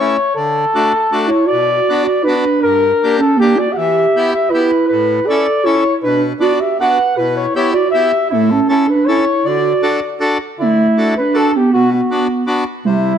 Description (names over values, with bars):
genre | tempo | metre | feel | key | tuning
alpine folk, alpine dance band | 159 BPM | 3/4 | straight | D major | A4 = 440 Hz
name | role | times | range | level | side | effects
mellow flugelhorn | melody | 0.0-13.2 s | E4 to F#5 | -15 LUFS | left 2 dB | slapback echo
accordion | accompaniment | 0.0-13.1 s | G2 to A4 | -20 LUFS | left 2 dB | none
pure sine lead | second line | 1.3-13.2 s | G3 to B4 | -15 LUFS | right 4 dB | chorus, slapback echo
room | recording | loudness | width
moderate echo chamber reverb, RT60 1.7 s | dark, warm production | -12 LUFS | side -8 dB against mid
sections
0.0-10.6 A section; 10.6-13.2 B section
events
none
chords
0.4 D; 1.5 Bm; 2.6 Gm; 3.8 Em; 4.9 Aadd9; 6.0 Bm; 7.2 Em/B; 8.3 A; 9.4 D; 11.7 Bm